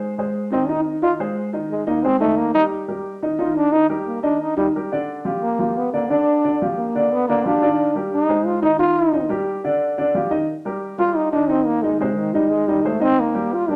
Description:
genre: jazz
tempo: 178 BPM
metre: 4/4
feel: straight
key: unclear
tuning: A4 = 441 Hz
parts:
  - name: dark grand piano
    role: accompaniment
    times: 0.0-13.8 s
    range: D3 to Eb5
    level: -23 LUFS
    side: equal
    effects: none
  - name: breathy trombone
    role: melody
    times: 0.5-13.8 s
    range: C3 to F4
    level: -22 LUFS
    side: equal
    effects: none
room: wet large studio reverb, RT60 1.0 s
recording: none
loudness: -20 LUFS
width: mono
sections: 0.0-10.5 A section; 10.5-13.8 A section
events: trombone solo 0.0-13.8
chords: 0.0 Ab/Eb; 2.4 Ebmaj7; 5.1 Gm7; 7.8 Cm7; 8.5 Fm7; 9.1 Ebmaj7; 9.8 G5; 10.5 Eb; 11.8 Abmaj7/C; 13.2 Ebadd9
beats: 0.01 0.35 0.69 | 1.02 1.36 1.70 2.04 | 2.38 2.71 3.05 3.39 | 3.73 4.07 4.41 4.74 | 5.08 5.42 5.76 6.09 | 6.43 6.77 7.11 7.45 | 7.78 8.12 8.46 8.80 | 9.13 9.47 9.81 10.15 | 10.48 10.82 11.16 11.50 | 11.83 12.17 12.51 12.84 | 13.18 13.52

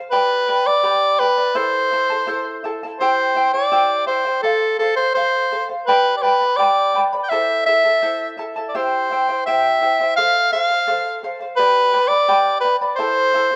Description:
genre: andean folk, Andean ensemble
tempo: 84 BPM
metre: 2/4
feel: straight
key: unclear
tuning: A4 = 440 Hz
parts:
  - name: charango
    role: accompaniment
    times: 0.0-13.6 s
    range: E4 to B5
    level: -24 LUFS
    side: equal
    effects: none
  - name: warm soprano saxophone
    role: melody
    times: 0.1-13.6 s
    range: A4 to G5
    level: -19 LUFS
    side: equal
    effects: none
room: moderate plate reverb, RT60 2.4 s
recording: none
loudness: -18 LUFS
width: mono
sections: 0.0-3.0 A section; 3.0-13.6 A section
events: speeding up 0.0-13.6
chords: 0.1 G; 1.6 Am; 3.0 C; 4.4 F; 5.9 G; 7.3 Am; 8.7 C; 10.2 F; 11.6 G; 13.0 Am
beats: | 0.11 0.84 | 1.56 2.29 | 3.01 3.73 | 4.45 5.17 | 5.88 6.60 | 7.31 8.03 | 8.74 9.45 | 10.16 10.87 | 11.57 12.28 | 12.98

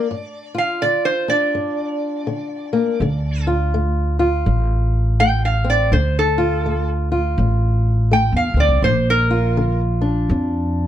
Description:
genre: acoustic country blues, solo or duo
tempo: 82 BPM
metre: 4/4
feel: swing 61% on 8ths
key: D minor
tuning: A4 = 438 Hz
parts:
  - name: metal-body resonator slide guitar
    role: melody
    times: 0.0-9.8 s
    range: A4 to G5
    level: -20 LUFS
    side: right 1 dB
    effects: plate reverb
  - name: fingerpicked old ladder-braced acoustic guitar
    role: accompaniment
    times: 0.0-10.9 s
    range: F2 to F4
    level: -22 LUFS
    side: left 2 dB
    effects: none
  - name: upright bass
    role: bass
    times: 3.0-10.9 s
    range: A1 to F2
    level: -18 LUFS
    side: equal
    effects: none
room: light reverb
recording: dark, warm production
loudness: -16 LUFS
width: side -11 dB against mid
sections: 0.0-10.9 A section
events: none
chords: 0.0 G7(no3); 3.0 Dm; 8.8 Bb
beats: | 0.09 0.82 1.55 2.28 | 3.01 3.74 4.47 5.20 | 5.93 6.66 7.39 8.12 | 8.85 9.58 10.31

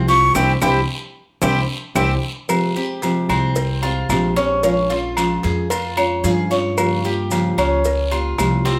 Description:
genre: latin, Cuban son and guajira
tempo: 112 BPM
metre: 4/4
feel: straight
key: F minor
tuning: A4 = 443 Hz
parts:
  - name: nylon-string guitar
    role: accompaniment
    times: 0.0-8.8 s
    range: C3 to G4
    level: -24 LUFS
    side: equal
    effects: none
  - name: Cuban tres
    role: arpeggios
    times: 0.0-8.8 s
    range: C4 to Db5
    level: -25 LUFS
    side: equal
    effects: none
  - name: upright bass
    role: bass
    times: 0.0-8.8 s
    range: Bb1 to G2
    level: -24 LUFS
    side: equal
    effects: none
  - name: breathy hollow silver concert flute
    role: melody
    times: 0.1-2.1 s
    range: G5 to Db6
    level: -20 LUFS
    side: equal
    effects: none
  - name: guiro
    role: percussion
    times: 0.1-8.8 s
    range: none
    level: -35 LUFS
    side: equal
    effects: none
  - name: maracas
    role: percussion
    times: 0.1-8.8 s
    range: none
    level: -35 LUFS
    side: equal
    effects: none
  - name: claves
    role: percussion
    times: 0.3-8.7 s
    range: none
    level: -32 LUFS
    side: equal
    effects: none
  - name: bongos and cowbell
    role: percussion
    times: 0.4-8.8 s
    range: none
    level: -31 LUFS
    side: equal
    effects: none
  - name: timbales and agogo bells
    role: percussion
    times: 0.4-8.7 s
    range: none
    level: -27 LUFS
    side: equal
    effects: none
room: moderate large studio reverb, RT60 0.8 s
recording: none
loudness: -19 LUFS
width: mono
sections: 0.0-2.5 A section; 2.5-8.8 B section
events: flute solo 0.0-2.5; band accent 0.4-2.5; drum fill 2.2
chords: 0.4 C; 2.5 Fmadd9; 4.6 Bbm7; 6.8 Gm7b5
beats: | 0.35 0.89 1.43 1.96 | 2.50 3.03 3.57 4.10 | 4.64 5.17 5.71 6.24 | 6.78 7.31 7.85 8.38

